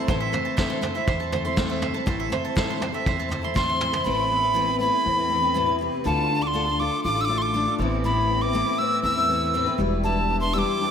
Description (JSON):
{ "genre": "indie folk with a building arrangement", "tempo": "120 BPM", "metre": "4/4", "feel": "straight", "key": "A minor", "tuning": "A4 = 440 Hz", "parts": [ { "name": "picked steel-string acoustic guitar", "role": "accompaniment", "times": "0.0-10.9 s", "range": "A2 to B4", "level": "-28 LUFS", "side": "left 4 dB", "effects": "none" }, { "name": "bowl-back mandolin", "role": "arpeggios", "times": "0.0-4.1 s", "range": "C5 to C6", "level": "-28 LUFS", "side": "right 6 dB", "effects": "analog delay" }, { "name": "upright bass", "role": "bass", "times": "0.1-10.6 s", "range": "E1 to E2", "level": "-30 LUFS", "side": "equal", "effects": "none" }, { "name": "vintage brush drum kit", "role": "drums", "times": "0.1-4.0 s", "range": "kick drum, snare drum, toms", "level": "-27 LUFS", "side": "equal", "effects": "none" }, { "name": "breathy bright tin whistle", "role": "melody", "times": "3.6-10.9 s", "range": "A5 to E6", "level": "-23 LUFS", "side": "right 1 dB", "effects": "analog delay" }, { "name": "fingerpicked steel-string acoustic guitar", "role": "accompaniment", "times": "4.1-10.9 s", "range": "E2 to G4", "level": "-29 LUFS", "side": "left 2 dB", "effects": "ensemble chorus" } ], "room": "wet lush hall reverb, RT60 2.0 s", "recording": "dreamy mix soaked in reverb", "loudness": "-21 LUFS", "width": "side -8 dB against mid", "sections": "0.1-4.1 A section; 4.1-10.9 B section", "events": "drum fill 3.6-4.1", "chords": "0.1 Am; 4.1 Amadd9; 6.1 Dm; 7.8 Amadd9; 9.8 Em7" }